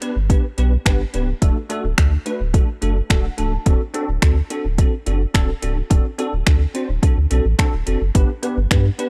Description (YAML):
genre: dance-pop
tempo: 107 BPM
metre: 4/4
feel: straight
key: D major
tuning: A4 = 440 Hz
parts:
  - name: bell-like tine electric piano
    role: accompaniment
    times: 0.0-9.1 s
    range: A3 to A5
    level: -27 LUFS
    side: equal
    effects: ensemble chorus, sidechain pumping
  - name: deep house drum kit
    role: drums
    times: 0.0-9.1 s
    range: finger snaps, hi-hat, kick drum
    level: -19 LUFS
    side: equal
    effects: none
  - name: warm sub bass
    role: bass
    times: 0.2-8.9 s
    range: C#1 to G2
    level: -21 LUFS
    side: equal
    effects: sidechain pumping
room: digital ambience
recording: dry, gritty hardware recording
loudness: -19 LUFS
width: mono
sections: 0.0-9.1 A section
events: tine electric piano fill 2.8-3.7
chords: 0.0 G; 1.4 D; 3.7 D7; 8.2 G